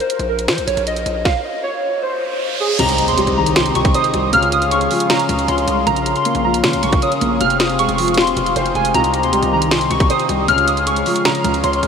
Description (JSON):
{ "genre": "hip hop, trap", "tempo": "156 BPM", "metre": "4/4", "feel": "half-time", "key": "C phrygian", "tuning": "A4 = 441 Hz", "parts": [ { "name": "warbly lo-fi synth keys", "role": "melody", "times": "0.0-11.9 s", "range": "Ab4 to F6", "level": "-18 LUFS", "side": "right 1 dB", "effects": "chorus, diffuse ambient delay" }, { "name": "trap drum kit", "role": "drums", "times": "0.0-11.9 s", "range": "crash cymbal, hi-hat, kick drum, snare drum", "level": "-21 LUFS", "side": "equal", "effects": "vintage 12-bit sampler grit" }, { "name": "distorted 808-style bass", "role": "bass", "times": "0.2-11.9 s", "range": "F1 to F3", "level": "-24 LUFS", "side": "equal", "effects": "distortion" }, { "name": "riser and impact", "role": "sound effects", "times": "2.1-4.3 s", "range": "none", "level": "-26 LUFS", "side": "right 2 dB", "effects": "none" }, { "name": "felt-muted upright piano", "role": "accompaniment", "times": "2.8-11.9 s", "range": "C3 to Db5", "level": "-20 LUFS", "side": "left 2 dB", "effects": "ensemble chorus" }, { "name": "hand-pumped harmonium", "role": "sustained chords", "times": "2.8-11.9 s", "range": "C4 to F5", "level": "-23 LUFS", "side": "left 1 dB", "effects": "none" } ], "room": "wet huge ambient reverb, RT60 7.3 s", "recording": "dreamy mix soaked in reverb", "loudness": "-14 LUFS", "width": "side -6 dB against mid", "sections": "0.0-2.8 A section; 2.8-11.9 B section", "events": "riser 2.1-2.8; impact 2.8-4.3", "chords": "0.0 Bb5; 1.3 N.C.; 2.8 Cm; 4.3 Db; 5.9 Bbm; 7.4 Fm; 8.9 Cm; 10.5 Db" }